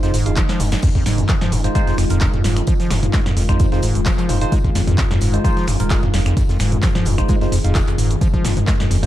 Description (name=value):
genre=acid house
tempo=130 BPM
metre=4/4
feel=swing 53% on 16ths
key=F minor pentatonic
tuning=A4 = 439 Hz
part: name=warbly tape-like pad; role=sustained chords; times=0.0-9.1 s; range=Eb3 to Ab4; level=-25 LUFS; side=left 1 dB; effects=chorus, built-in reverb, sidechain pumping
part: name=acid bass, square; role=riff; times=0.0-9.1 s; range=F2 to Ab3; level=-20 LUFS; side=equal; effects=overdrive
part: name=bell-like tine electric piano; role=stabs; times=0.0-9.1 s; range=Ab3 to F5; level=-26 LUFS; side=right 1 dB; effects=phaser, ping-pong delay
part: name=modern studio drum kit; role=drums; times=0.0-9.0 s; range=hi-hat, snare drum, tambourine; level=-38 LUFS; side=left 1 dB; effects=none
part: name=punchy analog drum machine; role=drums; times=0.0-9.1 s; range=crash cymbal, finger snaps, handclaps, hi-hat, shaker, snare drum, toms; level=-23 LUFS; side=equal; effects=none
part: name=saturated sub bass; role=bass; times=0.1-9.1 s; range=Eb1 to F1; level=-23 LUFS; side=equal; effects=sidechain pumping
part: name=electronic kick drum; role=drums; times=0.4-8.8 s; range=none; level=-19 LUFS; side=equal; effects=none
room=digital ambience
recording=dark, warm production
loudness=-15 LUFS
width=side -13 dB against mid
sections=0.0-9.1 A section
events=drum fill 0.4-0.8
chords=0.0 Fm7